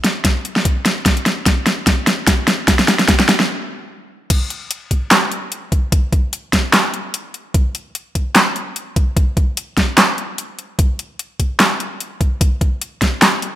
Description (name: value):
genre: dubstep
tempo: 148 BPM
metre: 4/4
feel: swing 55% on 16ths, half-time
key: none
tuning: none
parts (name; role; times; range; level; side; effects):
- dubstep drum kit; drums; 0.0-13.5 s; crash cymbal, handclaps, hi-hat, snare drum; -14 LUFS; equal; overdrive, studio reverb
- electronic kick drum; drums; 0.2-13.1 s; none; -16 LUFS; equal; overdrive, studio reverb
room: light reverb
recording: none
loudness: -14 LUFS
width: side -13 dB against mid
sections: 0.0-4.3 A section; 4.3-13.6 B section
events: build-up 0.0-4.3; drum fill 0.0-3.5; stop 3.5-4.3; drop 4.3-13.6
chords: none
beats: 0.25 0.65 | 1.06 1.46 1.87 2.27 | 2.68 3.08 3.49 3.90 | 4.30 4.71 5.11 5.52 | 5.92 6.33 6.73 7.14 | 7.54 7.95 8.36 8.76 | 9.17 9.57 9.98 10.38 | 10.79 11.19 11.60 12.00 | 12.41 12.81 13.22